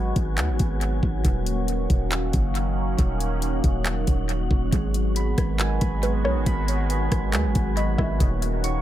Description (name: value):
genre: hip hop, atmospheric cloud-rap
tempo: 138 BPM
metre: 4/4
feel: half-time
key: G# minor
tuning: A4 = 440 Hz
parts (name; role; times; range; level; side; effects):
- sweeping resonant pad; sustained chords; 0.0-8.8 s; D#3 to F#4; -29 LUFS; right 1 dB; chorus
- warm 808-style bass; bass; 0.0-8.8 s; D#1 to D#2; -25 LUFS; equal; none
- wind-like tuned noise texture; texture; 0.0-8.8 s; D#4 to G#5; -36 LUFS; left 1 dB; built-in reverb
- trap drum kit; drums; 0.2-8.7 s; handclaps, hi-hat, kick drum, rim click; -24 LUFS; equal; analog delay
- soft electric-piano-like synth keys; arpeggios; 4.7-8.8 s; D#3 to C#6; -30 LUFS; right 6 dB; chorus, analog delay
- warbly dusty pluck; melody; 6.0-8.2 s; B4 to E5; -32 LUFS; equal; chorus, analog delay
room: little or no reverb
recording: echo-heavy mix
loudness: -21 LUFS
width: side -13 dB against mid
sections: 0.0-4.7 A section; 4.7-8.8 B section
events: none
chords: 0.0 G#m7; 1.2 D#m7; 4.7 G#m7; 8.2 D#m7